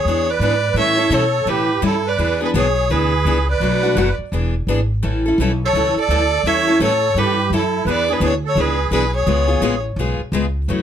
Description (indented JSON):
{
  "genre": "acoustic string swing (jazz manouche)",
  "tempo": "169 BPM",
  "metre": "4/4",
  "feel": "swing 62% on 8ths",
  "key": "E mixolydian",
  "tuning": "A4 = 440 Hz",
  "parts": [
    { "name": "warm violin", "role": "melody", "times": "0.0-9.8 s", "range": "A4 to E5", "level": "-20 LUFS", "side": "equal", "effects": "none" },
    { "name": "musette accordion", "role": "second line", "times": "0.0-9.8 s", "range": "E4 to C#5", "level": "-22 LUFS", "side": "right 8 dB", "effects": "none" },
    { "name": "upright bass", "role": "bass", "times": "0.0-10.8 s", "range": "E1 to B2", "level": "-21 LUFS", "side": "equal", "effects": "none" },
    { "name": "picked steel-string acoustic guitar", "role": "accompaniment", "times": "0.1-10.8 s", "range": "B2 to A4", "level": "-20 LUFS", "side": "left 2 dB", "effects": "none" }
  ],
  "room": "light reverb",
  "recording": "none",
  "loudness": "-15 LUFS",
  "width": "side -9 dB against mid",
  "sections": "0.0-10.8 A section",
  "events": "none",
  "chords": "0.0 E7; 0.8 A7; 2.2 E7; 3.6 Bm7; 4.3 E7; 5.0 A7; 7.9 E7; 9.3 C#7"
}